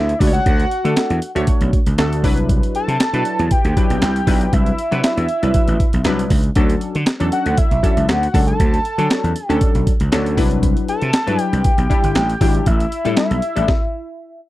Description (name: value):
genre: early-eighties boogie funk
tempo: 118 BPM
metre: 4/4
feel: straight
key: D major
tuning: A4 = 444 Hz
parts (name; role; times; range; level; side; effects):
- fat analog lead; melody; 0.0-14.4 s; D5 to A5; -22 LUFS; left 1 dB; chorus, phaser, slapback echo
- funky polysynth comp; accompaniment; 0.0-13.7 s; F#3 to C#5; -22 LUFS; left 2 dB; chorus
- gritty slap bass; bass; 0.0-13.6 s; G1 to D3; -19 LUFS; equal; overdrive
- breakbeat sampler-style drum kit; drums; 0.1-13.8 s; handclaps, hi-hat, kick drum, snare drum; -17 LUFS; equal; none
room: little or no reverb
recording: dry, close 1970s-style studio recording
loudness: -14 LUFS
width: side -16 dB against mid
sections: 0.0-14.5 A section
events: stop 13.7-14.5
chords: 0.0 Dmaj7; 2.2 Cmaj9#11; 6.6 Dmaj7; 10.4 Cmaj9#11; 12.7 A7sus4